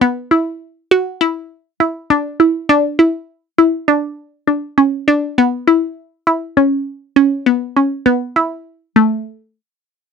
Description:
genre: progressive instrumental, progressive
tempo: 202 BPM (eighths)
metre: 9/8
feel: straight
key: unclear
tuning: A4 = 440 Hz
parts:
  - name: resonant blip pluck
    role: solo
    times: 0.0-9.2 s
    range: A3 to F#4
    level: -12 LUFS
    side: equal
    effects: phaser
room: moderate booth ambience, RT60 0.2 s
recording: dry, close 1970s-style studio recording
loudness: -14 LUFS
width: side -6 dB against mid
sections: 0.0-9.0 A section; 9.0-10.1 B section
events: none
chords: none

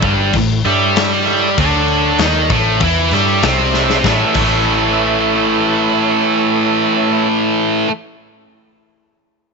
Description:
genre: blues rock power trio and southern rock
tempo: 97 BPM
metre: 4/4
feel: straight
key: A mixolydian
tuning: A4 = 440 Hz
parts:
  - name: overdriven tonewheel organ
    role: sustained chords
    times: 0.0-7.3 s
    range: E4 to E5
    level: -21 LUFS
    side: right 14 dB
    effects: wide subtle chorus
  - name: tight distorted guitar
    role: riff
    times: 0.0-7.9 s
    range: G2 to G4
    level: -14 LUFS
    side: equal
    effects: distortion
  - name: vintage muted picked electric bass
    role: bass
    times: 0.0-7.6 s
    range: G1 to G2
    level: -20 LUFS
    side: equal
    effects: none
  - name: big rock drum kit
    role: drums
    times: 0.0-4.5 s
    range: crash cymbal, kick drum, snare drum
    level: -20 LUFS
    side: left 6 dB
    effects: none
room: studio ambience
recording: 1960s-style stereo with parts hard left and right, nothing above 7.8 kHz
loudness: -12 LUFS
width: side -4 dB against mid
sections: 0.0-4.1 A section; 4.1-6.5 B section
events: drum fill 3.8-4.1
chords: 0.0 A

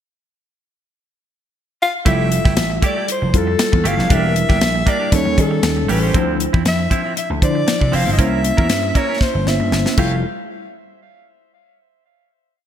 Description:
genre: polished 1980s jazz-funk pop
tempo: 117 BPM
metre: 4/4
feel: swing 54% on 16ths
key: F major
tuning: A4 = 440 Hz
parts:
  - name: breathy soprano saxophone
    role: melody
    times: 1.8-10.2 s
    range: A4 to F5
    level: -21 LUFS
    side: left 1 dB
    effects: ping-pong delay
  - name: tine electric piano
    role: accompaniment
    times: 2.0-10.3 s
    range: F3 to C5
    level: -22 LUFS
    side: left 1 dB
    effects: overdrive, fast stereo tremolo, analog chorus
  - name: semi-hollow electric guitar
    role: riff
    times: 2.1-10.1 s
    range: F3 to Bb4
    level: -25 LUFS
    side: right 6 dB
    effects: analog chorus
  - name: vintage slap bass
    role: bass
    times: 2.1-10.2 s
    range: E1 to Eb3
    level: -20 LUFS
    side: equal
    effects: none
  - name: tight funk drum kit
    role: drums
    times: 2.1-10.1 s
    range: crash cymbal, hi-hat, kick drum, snare drum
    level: -18 LUFS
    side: equal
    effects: none
room: light reverb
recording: bright 1980s-style digital production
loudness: -14 LUFS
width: side -10 dB against mid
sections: 0.0-2.1 pickup bar; 2.1-10.2 verse; 10.2-12.3 final hit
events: drum fill 9.2-10.2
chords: 0.0 N.C.; 2.1 Fmaj9; 4.1 Em7b5; 5.1 Eb7#11; 6.1 Dm9; 8.2 C7b9; 10.0 Fmaj9; 10.2 N.C.

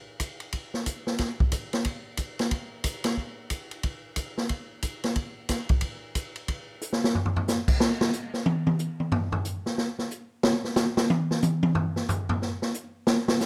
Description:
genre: jazz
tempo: 182 BPM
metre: 4/4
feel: swing 63% on 8ths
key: none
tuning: none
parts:
  - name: swinging big-band drum kit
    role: drums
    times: 0.2-13.5 s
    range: crash cymbal, hi-hat, kick drum, ride cymbal, snare drum, toms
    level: -28 LUFS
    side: equal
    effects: none
room: light reverb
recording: close, detailed microphones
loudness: -28 LUFS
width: mono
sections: 0.0-7.8 A section; 7.8-13.5 B section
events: drum fill 6.8-7.5; drum solo 7.8-13.5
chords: none

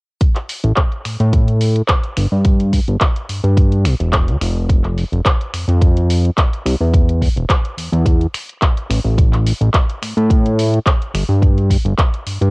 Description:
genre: nu-disco, nu disco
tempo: 107 BPM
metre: 4/4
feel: straight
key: unclear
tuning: A4 = 441 Hz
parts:
  - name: electronic kick drum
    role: drums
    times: 0.2-12.1 s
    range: none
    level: -14 LUFS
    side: equal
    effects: cassette tape
  - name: house drum kit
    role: drums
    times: 0.2-12.5 s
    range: finger snaps, handclaps, hi-hat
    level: -21 LUFS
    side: equal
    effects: cassette tape
  - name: fat analog bass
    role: bass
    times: 0.6-12.5 s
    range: E1 to A2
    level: -14 LUFS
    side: equal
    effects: none
room: little or no reverb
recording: home recording on cassette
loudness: -13 LUFS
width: side -31 dB against mid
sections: 0.2-12.5 A section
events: none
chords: none

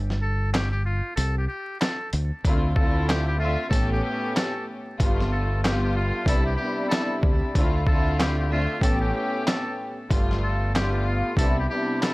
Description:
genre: hip hop, boom-bap hip-hop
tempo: 94 BPM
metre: 4/4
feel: swing 59% on 16ths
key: D dorian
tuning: A4 = 440 Hz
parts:
  - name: deep dub fingered electric bass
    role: bass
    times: 0.0-11.7 s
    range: G1 to D2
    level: -25 LUFS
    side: equal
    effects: none
  - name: dusty soul sampler-style drum kit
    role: drums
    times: 0.1-12.1 s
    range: handclaps, hi-hat, kick drum, snare drum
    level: -23 LUFS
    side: equal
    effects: none
  - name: trumpet with metal mute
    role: melody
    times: 0.2-12.1 s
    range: F4 to A4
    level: -31 LUFS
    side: left 1 dB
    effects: high-pass filter, low-pass filter, tape echo
  - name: warm studio string section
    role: accompaniment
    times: 2.4-12.1 s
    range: G2 to E5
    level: -27 LUFS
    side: left 1 dB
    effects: cassette tape, high-pass filter, low-pass filter
room: small room ambience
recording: dry, gritty hardware recording, vinyl crackle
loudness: -22 LUFS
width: side -21 dB against mid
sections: 0.0-12.1 A section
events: break 0.0-2.4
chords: 0.0 Fadd9/G; 1.2 Am7/C; 2.4 Dm7; 3.7 A7; 5.0 G7; 6.3 Cmaj7; 7.6 Dm7; 8.8 A7; 10.1 G7; 11.4 Cmaj7

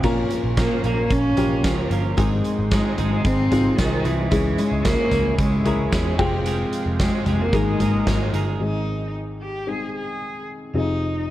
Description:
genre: piano-driven pop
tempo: 112 BPM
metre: 4/4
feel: straight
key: Ab major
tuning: A4 = 440 Hz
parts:
  - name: warm upright piano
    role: accompaniment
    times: 0.0-11.3 s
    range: Ab2 to G5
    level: -26 LUFS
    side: left 3 dB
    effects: none
  - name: warm analog pad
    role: sustained chords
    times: 0.0-8.6 s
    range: Ab3 to Eb6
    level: -35 LUFS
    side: right 1 dB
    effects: chorus
  - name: twelve-string electric guitar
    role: riff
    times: 0.0-8.6 s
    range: Ab2 to Bb4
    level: -30 LUFS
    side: right 5 dB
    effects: none
  - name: vintage muted picked electric bass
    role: bass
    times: 0.0-11.3 s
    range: F1 to Fb2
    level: -24 LUFS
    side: equal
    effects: none
  - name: huge arena drum kit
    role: drums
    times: 0.0-8.5 s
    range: crash cymbal, hi-hat, kick drum, snare drum, toms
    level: -24 LUFS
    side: equal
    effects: none
  - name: tambourine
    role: percussion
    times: 0.0-8.2 s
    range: none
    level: -42 LUFS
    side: left 5 dB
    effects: none
  - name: rich cello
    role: melody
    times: 0.6-11.2 s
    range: Eb3 to Ab4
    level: -24 LUFS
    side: equal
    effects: none
room: light reverb, studio reverb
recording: worn, warbling old tape, cassette tape, warbly pitch drift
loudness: -19 LUFS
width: side -14 dB against mid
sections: 0.0-8.6 A section; 8.6-11.3 B section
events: none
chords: 0.0 Bbm; 2.2 Ab; 4.3 Dbm; 6.2 Fmadd9; 7.5 Absus2; 8.6 Ab; 10.7 Fm7

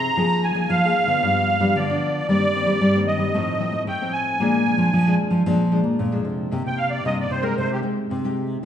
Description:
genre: samba and choro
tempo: 113 BPM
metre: 4/4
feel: straight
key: unclear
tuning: A4 = 440 Hz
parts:
  - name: musette accordion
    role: melody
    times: 0.0-7.8 s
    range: G4 to Bb5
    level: -22 LUFS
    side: right 2 dB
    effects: none
  - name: nylon-string guitar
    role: accompaniment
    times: 0.0-8.7 s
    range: F2 to Ab4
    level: -24 LUFS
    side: left 3 dB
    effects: none
  - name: nylon-string guitar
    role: bass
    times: 0.0-8.6 s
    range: Bb2 to Bb3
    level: -23 LUFS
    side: equal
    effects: none
room: wet recital hall reverb, RT60 1.6 s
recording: recorded in a church or concert hall, nothing above 10.8 kHz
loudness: -18 LUFS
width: side -9 dB against mid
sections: 0.0-6.5 A section; 6.5-8.7 B section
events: accordion solo 6.5-8.7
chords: 0.2 Bb7sus4/F; 1.2 G7; 2.3 Cm7/G; 3.3 F7/A; 4.4 Bb7; 6.5 Cm7; 7.6 Abmaj7/C

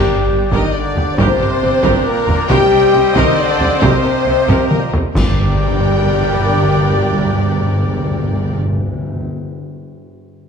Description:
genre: cinematic, epic orchestral film score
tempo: 136 BPM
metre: 3/4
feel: straight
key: G minor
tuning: A4 = 440 Hz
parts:
  - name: clear symphonic violin section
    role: melody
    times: 0.0-8.6 s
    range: Bb4 to G5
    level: -24 LUFS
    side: left 4 dB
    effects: none
  - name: mellow hollow concert flute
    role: second line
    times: 0.0-8.6 s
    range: Bb4 to G5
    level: -23 LUFS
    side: left 2 dB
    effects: none
  - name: warm symphonic violin section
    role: second line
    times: 0.0-8.6 s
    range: Bb4 to Eb5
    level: -25 LUFS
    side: left 3 dB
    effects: none
  - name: clear symphonic viola section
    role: accompaniment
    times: 0.0-8.6 s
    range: G4 to Bb4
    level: -25 LUFS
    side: right 1 dB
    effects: none
  - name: mellow French horn section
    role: sustained chords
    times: 0.0-8.6 s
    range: G3 to G4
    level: -19 LUFS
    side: left 4 dB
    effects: none
  - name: warm trombone section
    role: sustained chords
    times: 0.0-8.6 s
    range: Bb2 to G3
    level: -23 LUFS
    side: right 4 dB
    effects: none
  - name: warm woodwind section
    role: sustained chords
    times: 0.0-8.6 s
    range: Bb3 to D5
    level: -24 LUFS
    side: right 1 dB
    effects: none
  - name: clear symphonic double bass section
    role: bass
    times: 0.0-8.6 s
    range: G1 to C2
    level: -22 LUFS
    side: right 3 dB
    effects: none
  - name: rich symphonic cello section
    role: bass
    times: 0.0-8.6 s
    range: G2 to C3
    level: -21 LUFS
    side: right 3 dB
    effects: none
  - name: timpani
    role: percussion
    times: 0.0-0.5, 5.1-9.3 s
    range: G2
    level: -21 LUFS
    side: left 1 dB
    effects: none
  - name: taiko ensemble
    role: drums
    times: 0.5-6.0 s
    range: none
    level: -19 LUFS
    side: equal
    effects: none
  - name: clash cymbals and concert bass drum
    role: percussion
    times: 5.2-6.0 s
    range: none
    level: -22 LUFS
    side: equal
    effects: none
room: moderate scoring stage reverb, RT60 1.8 s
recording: dark, warm production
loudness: -12 LUFS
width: side -6 dB against mid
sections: 0.0-5.2 A section; 5.2-7.8 B section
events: band accent 0.0-0.3, 5.2-5.6; drum fill 4.5-5.2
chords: 0.0 Gm; 2.5 Cm7; 5.2 Gm

